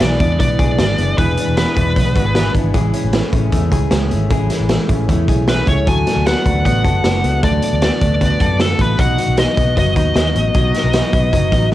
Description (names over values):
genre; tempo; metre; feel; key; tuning
jangly indie pop; 154 BPM; 4/4; straight; E mixolydian; A4 = 440 Hz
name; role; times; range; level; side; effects
high-gain lead guitar; melody; 0.0-2.5, 5.5-11.7 s; A4 to G#5; -20 LUFS; equal; distortion
picked steel-string acoustic guitar; accompaniment; 0.0-11.7 s; E2 to F#4; -23 LUFS; right 7 dB; cassette tape
direct-recorded clean electric guitar; arpeggios; 0.0-11.7 s; E3 to A4; -22 LUFS; left 8 dB; wide subtle chorus, cassette tape
vintage muted fingered electric bass; bass; 0.0-11.7 s; E1 to F#2; -18 LUFS; equal; none
raw garage drum kit; drums; 0.0-11.7 s; hi-hat, kick drum, snare drum; -18 LUFS; equal; cassette tape
room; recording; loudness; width
light reverb; home recording on cassette; -13 LUFS; side -14 dB against mid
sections
0.0-11.7 A section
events
none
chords
0.0 E7; 2.7 Amaj7; 5.9 D6; 9.0 B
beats
0.01 0.40 0.79 | 1.18 1.57 1.96 2.35 | 2.74 3.13 3.52 3.92 | 4.31 4.70 5.09 5.48 | 5.87 6.26 6.65 7.04 | 7.43 7.82 8.21 8.60 | 8.99 9.38 9.77 10.16 | 10.55 10.94 11.33 11.72